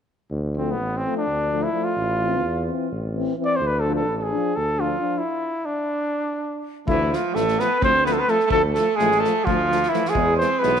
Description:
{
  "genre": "balkan folk, Balkan brass band",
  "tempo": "free time",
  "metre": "none",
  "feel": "none",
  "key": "D dorian sharp4",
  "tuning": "A4 = 442 Hz",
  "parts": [
    { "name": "warm tuba", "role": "bass", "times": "0.3-10.8 s", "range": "A1 to E2", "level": "-26 LUFS", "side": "equal", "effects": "none" },
    { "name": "mellow cornet", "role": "melody", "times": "0.6-10.8 s", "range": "B3 to D5", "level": "-22 LUFS", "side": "equal", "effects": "none" },
    { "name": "mellow euphonium", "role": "accompaniment", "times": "0.6-10.7 s", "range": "G#3 to D4", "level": "-29 LUFS", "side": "left 10 dB", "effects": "none" },
    { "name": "warm euphonium", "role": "accompaniment", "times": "0.6-10.7 s", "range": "E3 to F3", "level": "-31 LUFS", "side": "right 11 dB", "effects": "none" },
    { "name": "clear alto saxophone", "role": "second line", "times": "6.9-10.8 s", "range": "E3 to C4", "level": "-25 LUFS", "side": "right 10 dB", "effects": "none" },
    { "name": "unplugged drum kit", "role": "percussion", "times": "6.9-10.8 s", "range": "kick drum, snare drum", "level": "-30 LUFS", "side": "equal", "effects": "none" }
  ],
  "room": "moderate echo chamber reverb, RT60 2.3 s",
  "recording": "1960s-style stereo with parts hard left and right",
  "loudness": "-20 LUFS",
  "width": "side -8 dB against mid",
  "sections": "0.3-6.9 A section; 6.9-10.8 B section",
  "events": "stop 5.2-6.9",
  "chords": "0.3 Dm; 1.9 Am; 3.6 Dm; 5.2 N.C.; 6.9 Dm; 10.2 E",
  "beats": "free time"
}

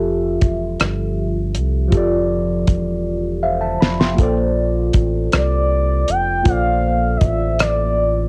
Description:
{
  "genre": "slow six-eight R&B",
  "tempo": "53 BPM (dotted quarters)",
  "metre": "6/8",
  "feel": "straight",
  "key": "Bb lydian",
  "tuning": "A4 = 440 Hz",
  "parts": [
    { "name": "tine electric piano", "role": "accompaniment", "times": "0.0-8.3 s", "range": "F3 to C6", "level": "-23 LUFS", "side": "equal", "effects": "phaser" },
    { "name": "round analog bass", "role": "bass", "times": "0.0-8.3 s", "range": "E1 to C2", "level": "-23 LUFS", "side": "equal", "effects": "none" },
    { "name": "damped 70s drum kit", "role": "drums", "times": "0.4-7.8 s", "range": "hi-hat, kick drum, rim click, snare drum", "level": "-18 LUFS", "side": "equal", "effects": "none" },
    { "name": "gliding portamento lead", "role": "melody", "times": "5.4-8.3 s", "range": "D5 to G5", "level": "-22 LUFS", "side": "equal", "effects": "chorus, plate reverb" }
  ],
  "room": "light reverb",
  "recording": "home recording on cassette",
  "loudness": "-18 LUFS",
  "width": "mono",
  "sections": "0.0-8.3 A section",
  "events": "drum fill 3.1-4.2; tine electric piano fill 3.1-4.2",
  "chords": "0.0 Fmaj9; 4.2 Bbmaj9",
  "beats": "0.80 | 1.93 3.06 | 4.20 5.33 | 6.46 7.59"
}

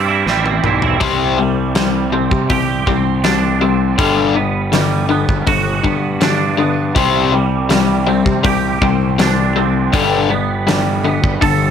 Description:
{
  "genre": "quiet-loud alternative rock",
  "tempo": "81 BPM",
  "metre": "4/4",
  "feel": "straight",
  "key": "unclear",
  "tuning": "A4 = 440 Hz",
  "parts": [
    { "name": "twangy electric guitar", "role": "arpeggios", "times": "0.0-11.7 s", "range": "C3 to A4", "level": "-19 LUFS", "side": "right 8 dB", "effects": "ensemble chorus, plate reverb" },
    { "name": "fuzz fingered electric bass", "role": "bass", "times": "0.0-11.7 s", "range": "G1 to C3", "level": "-19 LUFS", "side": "equal", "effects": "overdrive" },
    { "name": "big rock drum kit", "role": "drums", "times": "0.3-11.6 s", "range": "hi-hat, kick drum, snare drum, toms", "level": "-20 LUFS", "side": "right 1 dB", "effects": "none" },
    { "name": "raw garage guitar", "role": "riff", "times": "1.0-11.7 s", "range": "G2 to C4", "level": "-17 LUFS", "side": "left 8 dB", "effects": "overdrive" }
  ],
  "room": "light reverb",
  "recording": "none",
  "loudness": "-13 LUFS",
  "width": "side -8 dB against mid",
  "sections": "0.0-1.0 A section; 1.0-11.7 B section",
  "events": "drum fill 0.3-1.0",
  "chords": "0.0 C; 1.0 Csus2; 4.0 Gmaj7; 7.0 Csus2; 9.9 Gadd9",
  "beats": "0.27 | 1.02 1.76 2.50 3.25 | 3.99 4.73 5.47 6.22 | 6.96 7.70 8.45 9.19 | 9.93 10.68 11.42"
}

